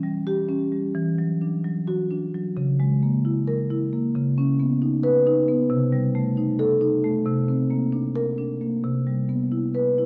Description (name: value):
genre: classical, contemporary piece for solo marimba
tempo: 265 BPM (eighths)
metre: 7/8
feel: rubato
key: unclear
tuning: A4 = 439 Hz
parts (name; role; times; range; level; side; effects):
- marimba with soft mallets; solo; 0.0-10.1 s; C3 to B4; -23 LUFS; equal; none
room: wet recital hall reverb, RT60 1.5 s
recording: worn, warbling old tape, cassette tape, warbly pitch drift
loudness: -23 LUFS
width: mono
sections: 0.0-10.1 A section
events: none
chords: 0.0 Em6; 1.0 Dadd9/E; 2.6 C#m6; 4.2 Badd9/C#; 5.7 Cm6; 7.3 Bbadd9/C; 8.8 Cmaj7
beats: 0.04 0.27 0.50 0.72 | 0.95 1.19 1.42 1.65 1.88 2.10 2.34 | 2.56 2.79 3.02 3.25 3.47 3.70 3.93 | 4.16 4.38 4.60 4.82 5.04 5.27 5.49 | 5.71 5.93 6.16 6.38 6.60 6.82 7.04 | 7.26 7.49 7.71 7.93 8.16 8.38 8.61 | 8.83 9.06 9.29 9.52 9.74 9.98